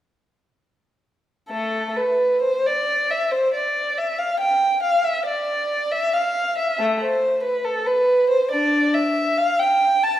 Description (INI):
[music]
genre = classical, baroque-style suite movement for unaccompanied violin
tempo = 69 BPM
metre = 4/4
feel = rubato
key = A minor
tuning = A4 = 441 Hz
[part]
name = dark violin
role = solo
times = 1.5-10.2 s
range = A3 to A5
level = -18 LUFS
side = equal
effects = none
[sound]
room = wet recital hall reverb, RT60 1.7 s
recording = heard from further back in the room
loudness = -18 LUFS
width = side -12 dB against mid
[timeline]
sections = 1.5-10.2 A section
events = none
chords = none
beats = | 1.49 2.41 3.31 4.19 | 5.05 5.92 6.80 7.66 | 8.51 9.37